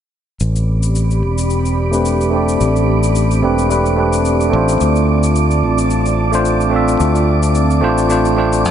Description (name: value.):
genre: sunset chillout.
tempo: 109 BPM.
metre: 4/4.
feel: swing 56% on 16ths.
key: A minor.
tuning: A4 = 440 Hz.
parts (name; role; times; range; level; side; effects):
airy breathy pad; sustained chords; 0.6-8.7 s; C4 to B5; -20 LUFS; right 2 dB; chorus.
modern bright fingered electric bass; bass; 0.4-8.7 s; E1 to F2; -16 LUFS; equal; none.
cabasa; drums; 0.4-8.7 s; none; -30 LUFS; left 6 dB; overdrive, studio reverb.
wind-like tuned noise texture; texture; 1.2-8.7 s; D6; -24 LUFS; right 5 dB; built-in reverb.
bell-like tine electric piano; accompaniment; 1.9-8.7 s; A3 to E5; -16 LUFS; equal; auto-pan, low-pass filter, ping-pong delay.
room: moderate lush hall reverb, RT60 2.4 s.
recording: nothing above 10.4 kHz.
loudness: -12 LUFS.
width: side -9 dB against mid.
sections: 0.4-8.7 A section.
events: filter sweep on fingered electric bass 0.4-8.7; filter sweep on tine electric piano 0.4-8.7.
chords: 0.4 Am11; 4.8 Dm7.